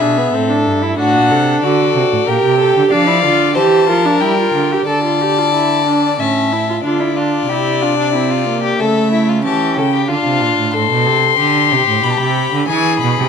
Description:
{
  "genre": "classical, baroque-style fugue for string quartet",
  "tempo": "92 BPM",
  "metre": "3/4",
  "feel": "straight",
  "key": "D minor",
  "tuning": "A4 = 439 Hz",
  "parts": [
    { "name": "rich violin", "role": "melody", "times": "0.0-13.3 s", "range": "D5 to C6", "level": "-17 LUFS", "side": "left 12 dB", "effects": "none" },
    { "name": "rich violin", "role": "second line", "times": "0.0-13.3 s", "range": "D4 to E5", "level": "-19 LUFS", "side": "left 4 dB", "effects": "none" },
    { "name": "warm viola", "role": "accompaniment", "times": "0.0-10.7 s", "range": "A3 to A4", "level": "-16 LUFS", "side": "right 3 dB", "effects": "none" },
    { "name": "rich cello", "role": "bass", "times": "0.0-13.2 s", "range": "G2 to G3", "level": "-19 LUFS", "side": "right 6 dB", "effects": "none" }
  ],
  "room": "moderate recital hall reverb, RT60 1.7 s",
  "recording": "close, detailed microphones",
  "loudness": "-12 LUFS",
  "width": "side -6 dB against mid",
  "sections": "0.0-6.8 A section; 6.8-13.3 B section",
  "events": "none",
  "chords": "0.3 Am; 1.0 D7/A; 2.3 Gm/Bb; 2.9 Dm; 4.9 Asus4/D; 6.2 A; 6.8 Dm; 8.1 Edim; 8.8 A/C#; 10.1 Dm; 10.7 Am; 12.0 Am11/B (rootless); 12.7 E"
}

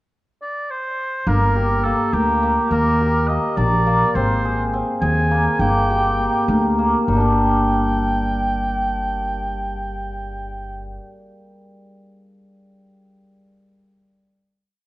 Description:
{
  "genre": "contemporary instrumental, chamber music in an uneven meter",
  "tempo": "207 BPM (eighths)",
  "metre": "5/8",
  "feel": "straight",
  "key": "G minor",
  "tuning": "A4 = 439 Hz",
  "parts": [
    { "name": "warm oboe", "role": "melody", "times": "0.4-10.8 s", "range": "G4 to Ab5", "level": "-24 LUFS", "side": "right 1 dB", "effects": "none" },
    { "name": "cimbalom", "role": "arpeggios", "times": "1.3-11.8 s", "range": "G3 to Bb4", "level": "-20 LUFS", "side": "equal", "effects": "none" },
    { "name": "upright bass", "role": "bass", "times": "1.3-11.0 s", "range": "G1 to Eb2", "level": "-21 LUFS", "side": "equal", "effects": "none" }
  ],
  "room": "moderate recital hall reverb, RT60 1.6 s",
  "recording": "worn, warbling old tape, cassette tape, warbly pitch drift",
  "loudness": "-17 LUFS",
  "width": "side -17 dB against mid",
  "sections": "0.0-1.3 pickup bar; 1.3-7.1 A section; 7.1-10.1 final chord",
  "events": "slowing down 4.2-7.1",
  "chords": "0.0 N.C.; 1.3 Gm; 2.7 Eb; 4.2 Ab; 5.6 Gm"
}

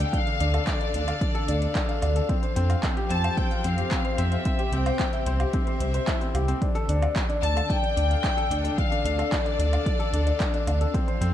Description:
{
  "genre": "piano and strings electronica",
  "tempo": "111 BPM",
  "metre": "4/4",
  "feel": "straight",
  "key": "D minor",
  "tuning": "A4 = 440 Hz",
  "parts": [
    { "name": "rich chamber violin section", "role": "melody", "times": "0.0-10.7 s", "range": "D5 to A5", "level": "-31 LUFS", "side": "left 3 dB", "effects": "tape echo" },
    { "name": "clear studio string section", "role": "sustained chords", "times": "0.0-11.3 s", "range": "C3 to F5", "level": "-34 LUFS", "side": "left 3 dB", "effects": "sidechain pumping" },
    { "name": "felt-muted upright piano", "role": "riff", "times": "0.0-11.3 s", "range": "C4 to F5", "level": "-29 LUFS", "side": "left 2 dB", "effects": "tape echo" },
    { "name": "dark detuned saw bass", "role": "bass", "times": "0.0-11.3 s", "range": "C2 to F2", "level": "-24 LUFS", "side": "equal", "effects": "sidechain pumping" },
    { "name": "deep house drum kit", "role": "drums", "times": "0.0-11.3 s", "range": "handclaps, hi-hat, woodblock", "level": "-34 LUFS", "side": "right 1 dB", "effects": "overdrive" },
    { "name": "electronic kick drum", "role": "drums", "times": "0.1-11.1 s", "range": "none", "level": "-27 LUFS", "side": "equal", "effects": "overdrive" }
  ],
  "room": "light reverb, small room ambience",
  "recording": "dark, warm production",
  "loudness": "-22 LUFS",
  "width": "side -11 dB against mid",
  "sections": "0.0-11.3 A section",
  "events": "none",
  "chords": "0.0 Dm; 2.3 Fsus2; 4.5 C; 6.6 Dm"
}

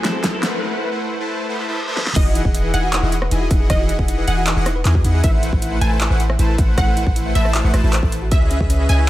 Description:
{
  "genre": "future bass",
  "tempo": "156 BPM",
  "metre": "4/4",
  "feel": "half-time",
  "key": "E major",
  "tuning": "A4 = 439 Hz",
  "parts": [
    { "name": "wide unison pluck", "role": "melody", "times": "0.0-9.1 s", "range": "D#5 to G#5", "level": "-26 LUFS", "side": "right 1 dB", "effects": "sidechain pumping, digital delay" },
    { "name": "dark studio string section", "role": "sustained chords", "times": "0.0-0.6 s", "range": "A2 to C5", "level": "-36 LUFS", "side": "left 3 dB", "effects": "none" },
    { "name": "soft supersaw", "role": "riff", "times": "0.0-9.1 s", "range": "E3 to A5", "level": "-24 LUFS", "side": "equal", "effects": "sidechain pumping" },
    { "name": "big-room dance drum kit", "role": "drums", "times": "0.0-9.0 s", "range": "crash cymbal, handclaps, hi-hat, rim click, snare drum", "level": "-24 LUFS", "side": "equal", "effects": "overdrive" },
    { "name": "riser, reverse cymbal and sub drop", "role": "sound effects", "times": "0.0-3.7 s", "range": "none", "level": "-27 LUFS", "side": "equal", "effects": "none" },
    { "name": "electronic kick drum", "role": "drums", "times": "0.2-8.7 s", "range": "none", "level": "-18 LUFS", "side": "equal", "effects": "overdrive" },
    { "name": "airy dreamy lead", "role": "arpeggios", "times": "2.2-9.1 s", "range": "E5 to A5", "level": "-32 LUFS", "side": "equal", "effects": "chorus, sidechain pumping, digital delay" },
    { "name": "thumb-piano-like synth pluck", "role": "arpeggios", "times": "2.2-9.1 s", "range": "C#4 to E5", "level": "-30 LUFS", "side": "left 2 dB", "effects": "chorus, cassette tape, sidechain pumping, digital delay" },
    { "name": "warm 808-style bass", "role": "bass", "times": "2.2-9.1 s", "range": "E1 to E2", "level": "-18 LUFS", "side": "equal", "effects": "sidechain pumping" }
  ],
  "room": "digital ambience",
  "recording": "high-pass filter",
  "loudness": "-15 LUFS",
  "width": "side -15 dB against mid",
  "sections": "0.0-2.2 A section; 2.2-9.1 B section",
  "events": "build-up 0.0-2.2; drum fill 0.0-0.6, 2.0; riser 0.0-0.6; filter sweep on supersaw synth 0.0-2.2; filter sweep 0.0-2.2; break 0.6-2.2; reverse cymbal 1.5-2.2; drop 2.2-9.1; impact 2.2-3.7",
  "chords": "0.0 Am6; 2.2 Emaj9; 5.2 Am6; 8.3 C#m9"
}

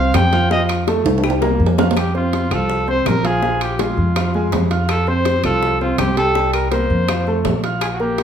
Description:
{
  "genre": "Afro-Cuban jazz",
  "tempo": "164 BPM",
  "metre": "4/4",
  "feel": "straight",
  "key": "F major",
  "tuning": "A4 = 440 Hz",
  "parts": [
    { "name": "clear trumpet", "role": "melody", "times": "0.0-8.2 s", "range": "F4 to G5", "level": "-20 LUFS", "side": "equal", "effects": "none" },
    { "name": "clear grand piano", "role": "accompaniment", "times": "0.0-8.2 s", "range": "F3 to F6", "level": "-21 LUFS", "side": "right 1 dB", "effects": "none" },
    { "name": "upright bass", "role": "bass", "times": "0.0-8.2 s", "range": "Bb1 to F2", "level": "-19 LUFS", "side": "equal", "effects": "none" },
    { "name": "bongos", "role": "percussion", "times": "0.1-8.2 s", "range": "none", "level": "-25 LUFS", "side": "left 6 dB", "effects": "none" },
    { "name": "claves", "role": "percussion", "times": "0.1-8.0 s", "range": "none", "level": "-32 LUFS", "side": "left 6 dB", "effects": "none" },
    { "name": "timbales", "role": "percussion", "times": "0.1-8.2 s", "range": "none", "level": "-24 LUFS", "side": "right 4 dB", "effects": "none" }
  ],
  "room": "moderate large studio reverb, RT60 0.9 s",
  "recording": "heard from further back in the room",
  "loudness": "-15 LUFS",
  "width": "side -8 dB against mid",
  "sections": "0.0-2.0 A section; 2.0-8.2 B section",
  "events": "trumpet solo 0.0-2.0; drum fill 1.1-2.0",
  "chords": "0.0 Fadd9; 1.2 C5; 2.0 F; 3.4 Bb5; 4.9 Fadd9; 6.4 C5; 7.1 F"
}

